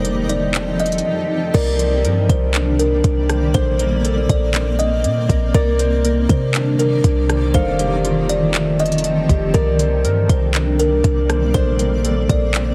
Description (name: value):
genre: hip hop, atmospheric cloud-rap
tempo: 120 BPM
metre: 4/4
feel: half-time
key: C dorian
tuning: A4 = 441 Hz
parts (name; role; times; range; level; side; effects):
- kalimba; melody; 0.0-12.7 s; Bb4 to Eb5; -24 LUFS; equal; digital delay
- granular cloud pad; sustained chords; 0.0-12.7 s; C3 to D5; -24 LUFS; equal; built-in reverb, sidechain pumping
- clean 808-style bass; bass; 0.0-12.7 s; F1 to C3; -22 LUFS; equal; none
- smooth R&B drum kit; drums; 0.0-12.7 s; crash cymbal, handclaps, hi-hat, kick drum, rim click; -22 LUFS; equal; none
- nylon-string guitar; texture; 0.0-12.7 s; G3 to D5; -36 LUFS; equal; none
- concert harp; arpeggios; 1.5-12.7 s; A3 to F5; -27 LUFS; equal; digital delay
room: small room ambience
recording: heavily compressed radio sound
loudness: -17 LUFS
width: mono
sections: 0.0-1.5 A section; 1.5-12.7 B section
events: none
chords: 0.0 F9; 1.5 Cm9; 3.5 Bbmaj9; 5.5 Cm9; 7.5 F9; 9.5 Cm9; 11.5 Bbmaj9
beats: 0.04 0.55 1.04 | 1.54 2.04 2.54 3.04 | 3.54 4.04 4.54 5.04 | 5.54 6.04 6.54 7.04 | 7.54 8.04 8.54 9.04 | 9.54 10.04 10.54 11.04 | 11.54 12.04 12.54